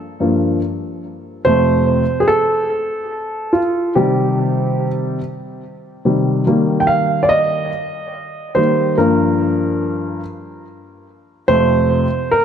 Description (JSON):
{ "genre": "pop", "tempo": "48 BPM (dotted quarters)", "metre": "6/8", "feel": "straight", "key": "G minor", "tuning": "A4 = 435 Hz", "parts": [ { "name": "warm upright piano", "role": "solo", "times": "0.2-12.4 s", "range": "F2 to G5", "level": "-15 LUFS", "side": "equal", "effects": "tape echo" } ], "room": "moderate concert hall reverb, RT60 2.1 s", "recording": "dark, warm production", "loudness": "-14 LUFS", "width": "side -8 dB against mid", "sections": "0.0-12.4 A section", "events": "upright piano solo 0.0-12.4", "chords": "0.0 Gm7; 1.5 F; 4.0 Cm; 6.5 Eb; 9.0 Gm7; 11.5 F" }